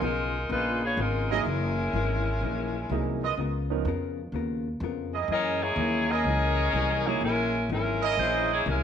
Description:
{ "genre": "jazz, big band swing", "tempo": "125 BPM", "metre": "4/4", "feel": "swing 66% on 8ths", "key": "unclear", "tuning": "A4 = 441 Hz", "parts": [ { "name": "bright saxophone section", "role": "melody", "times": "0.0-8.8 s", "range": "Ab3 to Eb5", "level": "-27 LUFS", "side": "left 2 dB", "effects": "none" }, { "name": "vintage hollow-body jazz guitar", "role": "accompaniment", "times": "0.0-8.8 s", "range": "Gb2 to Bb4", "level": "-35 LUFS", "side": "left 11 dB", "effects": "none" }, { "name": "warm baby grand piano", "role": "accompaniment", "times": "0.0-3.9, 7.1-7.2 s", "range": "F3 to Bb4", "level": "-33 LUFS", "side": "right 11 dB", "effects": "none" }, { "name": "upright bass", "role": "bass", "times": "0.0-8.8 s", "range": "Gb1 to Gb2", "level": "-30 LUFS", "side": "equal", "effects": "none" }, { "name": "mellow trumpet section", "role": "stabs", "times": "1.3-8.6 s", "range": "Fb4 to Eb5", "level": "-31 LUFS", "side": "right 9 dB", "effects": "none" } ], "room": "moderate echo chamber reverb, RT60 1.4 s, small room ambience", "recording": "1960s-style stereo with parts hard left and right", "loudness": "-25 LUFS", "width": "side -8 dB against mid", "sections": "0.0-8.8 A section", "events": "none", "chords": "0.0 Db13; 1.5 Gb13; 3.4 Db13; 5.3 Gb13" }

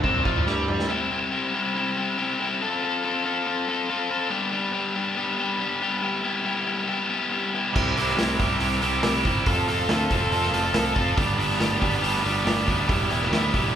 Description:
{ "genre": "indie rock", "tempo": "140 BPM", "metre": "4/4", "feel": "straight", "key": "C major", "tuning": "A4 = 440 Hz", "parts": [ { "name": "biting overdriven guitar", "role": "riff", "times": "0.0-13.7 s", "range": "C3 to A4", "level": "-24 LUFS", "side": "left 3 dB", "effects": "spring reverb" }, { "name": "biting overdriven guitar", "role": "riff", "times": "0.0-0.9, 7.7-13.7 s", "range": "F3 to A4", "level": "-27 LUFS", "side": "right 7 dB", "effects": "none" }, { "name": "modern bright picked electric bass", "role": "bass", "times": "0.0-0.9, 7.8-13.8 s", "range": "E1 to G2", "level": "-30 LUFS", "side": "equal", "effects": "none" }, { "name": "vintage drum kit", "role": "drums", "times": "0.0-0.9, 7.8-13.6 s", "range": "crash cymbal, hi-hat, kick drum, snare drum, toms", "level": "-26 LUFS", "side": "equal", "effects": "none" } ], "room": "moderate large studio reverb, RT60 0.8 s", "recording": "band playing live in one room", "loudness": "-21 LUFS", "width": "side -9 dB against mid", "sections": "0.9-13.8 A section", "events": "drum fill 0.5-0.9", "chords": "0.0 C; 2.6 F; 4.3 G; 6.0 Em; 7.8 C; 9.5 F; 11.2 G; 12.9 Em" }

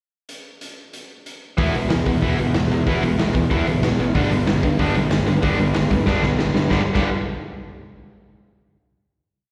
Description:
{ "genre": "punk rock", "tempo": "187 BPM", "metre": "4/4", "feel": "straight", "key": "G major", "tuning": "A4 = 440 Hz", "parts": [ { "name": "raw garage drum kit", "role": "drums", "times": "0.3-7.0 s", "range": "crash cymbal, hi-hat, kick drum, snare drum", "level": "-26 LUFS", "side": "equal", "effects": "none" }, { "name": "distorted electric guitar", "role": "riff", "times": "1.6-7.1 s", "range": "G2 to E4", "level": "-25 LUFS", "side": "equal", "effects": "overdrive, slapback echo" }, { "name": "distorted electric guitar", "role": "riff", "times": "1.6-7.1 s", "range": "E2 to G3", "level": "-26 LUFS", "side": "equal", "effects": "distortion, slapback echo" }, { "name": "fuzz picked electric bass", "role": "bass", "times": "1.6-7.1 s", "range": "E1 to G2", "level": "-25 LUFS", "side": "equal", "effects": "overdrive" } ], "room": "light reverb", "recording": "live gig heard through the venue's PA, recital hall reverb", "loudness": "-20 LUFS", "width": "mono", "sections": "0.3-1.6 pickup bar; 1.6-6.7 verse; 6.7-8.0 final chord", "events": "drum fill 6.1-6.7", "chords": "0.3 N.C.; 1.6 E5; 4.2 G" }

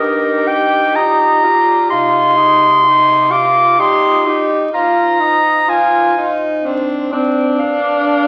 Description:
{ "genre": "classical, lyrical piece for single-reed quartet", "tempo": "63 BPM", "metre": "3/4", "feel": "rubato", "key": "C minor", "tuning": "A4 = 439 Hz", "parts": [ { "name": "warm clarinet", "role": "melody", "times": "0.0-8.3 s", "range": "Bb4 to D6", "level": "-15 LUFS", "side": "equal", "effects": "none" }, { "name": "clear alto saxophone", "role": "second line", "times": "0.0-8.3 s", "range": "C4 to G4", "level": "-22 LUFS", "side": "equal", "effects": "none" }, { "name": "mellow tenor saxophone", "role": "accompaniment", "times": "0.0-8.3 s", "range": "C4 to G4", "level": "-20 LUFS", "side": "equal", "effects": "none" }, { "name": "dark bass clarinet", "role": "bass", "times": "0.0-8.3 s", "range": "G2 to C3", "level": "-28 LUFS", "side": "equal", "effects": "none" } ], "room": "wet recital hall reverb, RT60 1.6 s", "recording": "very old 78 rpm record, vinyl crackle", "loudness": "-13 LUFS", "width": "mono", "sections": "0.0-8.3 A section", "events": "none", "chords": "0.0 Eb/G; 1.9 Cm; 4.7 Fm/Ab; 7.6 G5" }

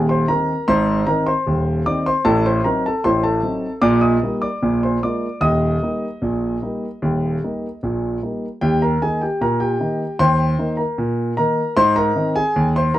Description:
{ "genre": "ragtime piano", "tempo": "76 BPM", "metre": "2/4", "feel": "straight", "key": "Eb major", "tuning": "A4 = 445 Hz", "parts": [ { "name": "warm concert grand piano", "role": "solo", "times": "0.0-13.0 s", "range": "Eb1 to Eb6", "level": "-17 LUFS", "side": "equal", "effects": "none" } ], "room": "light reverb", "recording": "dark, warm production", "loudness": "-17 LUFS", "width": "side -14 dB against mid", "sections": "0.0-8.6 A section; 8.6-13.0 A section", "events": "none", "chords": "0.0 Ab; 2.3 Adim7; 3.8 Eb/Bb; 4.6 Bb7; 5.4 Eb; 11.8 Ab" }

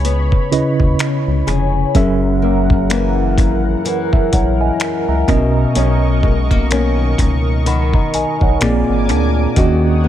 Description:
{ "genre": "contemporary R&B", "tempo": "63 BPM", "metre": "4/4", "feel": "swing 58% on 16ths", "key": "unclear", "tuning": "A4 = 440 Hz", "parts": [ { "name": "mellow tine electric piano", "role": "accompaniment", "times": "0.0-10.1 s", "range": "A#2 to B5", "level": "-18 LUFS", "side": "right 2 dB", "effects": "medium stereo tremolo, analog delay" }, { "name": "lush unison pad", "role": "sustained chords", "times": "0.0-10.1 s", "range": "A#4 to D#6", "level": "-24 LUFS", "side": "right 2 dB", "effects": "chorus, phaser" }, { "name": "nylon-string guitar", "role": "arpeggios", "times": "0.0-10.1 s", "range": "F#2 to G#4", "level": "-21 LUFS", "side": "left 7 dB", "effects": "analog delay" }, { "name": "rubbery square bass", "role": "bass", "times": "0.0-10.1 s", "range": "E#1 to D#2", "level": "-17 LUFS", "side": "equal", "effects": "none" }, { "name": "dusty soul sampler-style drum kit", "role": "drums", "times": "0.0-9.8 s", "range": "finger snaps, hi-hat, kick drum", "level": "-16 LUFS", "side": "equal", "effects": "analog delay" } ], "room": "little or no reverb", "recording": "echo-heavy mix", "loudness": "-13 LUFS", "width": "side -11 dB against mid", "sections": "0.0-10.1 A section", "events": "none", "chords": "0.0 C#m7; 1.9 F#7; 5.3 Bmaj9; 8.6 A#7; 9.6 D#m7" }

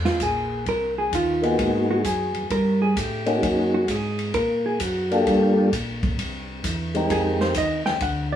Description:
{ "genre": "soul jazz organ trio", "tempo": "131 BPM", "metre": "4/4", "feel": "swing 66% on 8ths", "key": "unclear", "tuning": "A4 = 440 Hz", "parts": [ { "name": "tonewheel organ", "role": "bass", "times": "0.0-8.4 s", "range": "Bb1 to Bb2", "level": "-26 LUFS", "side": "equal", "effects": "stopped rotary speaker" }, { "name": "vintage drum kit", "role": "drums", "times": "0.0-8.2 s", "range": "hi-hat, kick drum, ride cymbal, snare drum", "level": "-29 LUFS", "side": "left 1 dB", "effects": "none" }, { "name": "hollow-body jazz guitar", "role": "accompaniment", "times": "0.1-8.4 s", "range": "F4 to G5", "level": "-25 LUFS", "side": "right 1 dB", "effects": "none" }, { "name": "percussive tonewheel organ", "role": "melody", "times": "1.4-7.5 s", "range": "Ab3 to Bb4", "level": "-21 LUFS", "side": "left 1 dB", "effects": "slow rotary speaker, plate reverb" } ], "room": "wet studio reverb, RT60 0.6 s", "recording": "heard from further back in the room", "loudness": "-20 LUFS", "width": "side -10 dB against mid", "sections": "0.0-8.4 A section", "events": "hollow-body jazz guitar solo 0.0-8.4", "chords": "0.0 Fm7; 1.6 Abm9; 2.5 Gsus2; 3.4 Gb69; 5.3 Gm9; 6.2 C; 7.1 Fm11" }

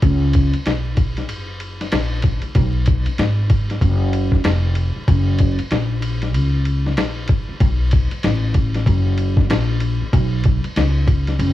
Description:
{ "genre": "hip hop, jazz-hop", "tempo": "95 BPM", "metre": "4/4", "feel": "swing 62% on 16ths", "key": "unclear", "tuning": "A4 = 440 Hz", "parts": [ { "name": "upright bass", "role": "bass", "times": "0.0-11.5 s", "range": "E#1 to C#2", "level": "-18 LUFS", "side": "equal", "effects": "none" }, { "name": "lo-fi sampler-style drum kit", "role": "drums", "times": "0.0-11.5 s", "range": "hi-hat, kick drum, ride cymbal, snare drum", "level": "-19 LUFS", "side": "left 1 dB", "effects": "none" } ], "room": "little or no reverb", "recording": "worn, warbling old tape, cassette tape, vinyl crackle, warbly pitch drift", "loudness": "-16 LUFS", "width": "side -14 dB against mid", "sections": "0.0-11.5 A section", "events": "none", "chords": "none" }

